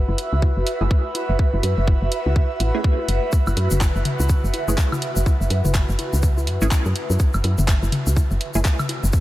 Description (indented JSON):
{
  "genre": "minimal techno",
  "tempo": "124 BPM",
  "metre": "4/4",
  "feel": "swing 60% on 16ths",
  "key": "unclear",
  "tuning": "A4 = 440 Hz",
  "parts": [
    { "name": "woody FM bass", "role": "bass", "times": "0.0-9.1 s", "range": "F#1 to F#2", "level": "-20 LUFS", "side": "equal", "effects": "sidechain pumping" },
    { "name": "airy breathy pad", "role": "texture", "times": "0.0-9.2 s", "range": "F#4 to E5", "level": "-27 LUFS", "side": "right 1 dB", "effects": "chorus, phaser, sidechain pumping" },
    { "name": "electronic congas, woodblock and toms", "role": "percussion", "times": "0.1-9.0 s", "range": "none", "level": "-30 LUFS", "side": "left 2 dB", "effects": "diffuse ambient delay" },
    { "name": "garage drum kit", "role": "drums", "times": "0.2-9.0 s", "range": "handclaps, hi-hat", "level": "-29 LUFS", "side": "equal", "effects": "overdrive" },
    { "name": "electronic kick drum", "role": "drums", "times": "0.4-9.2 s", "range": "none", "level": "-18 LUFS", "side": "equal", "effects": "overdrive" },
    { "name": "filtered dub chord stab", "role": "stabs", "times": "0.8-8.6 s", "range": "A3 to G#4", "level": "-32 LUFS", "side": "right 2 dB", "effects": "none" },
    { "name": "tube shaker", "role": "percussion", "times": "3.3-9.2 s", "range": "none", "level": "-33 LUFS", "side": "left 3 dB", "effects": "none" }
  ],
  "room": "light reverb",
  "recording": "none",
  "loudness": "-18 LUFS",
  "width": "side -16 dB against mid",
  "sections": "0.0-9.2 A section",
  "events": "none",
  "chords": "0.0 F#7(no3)"
}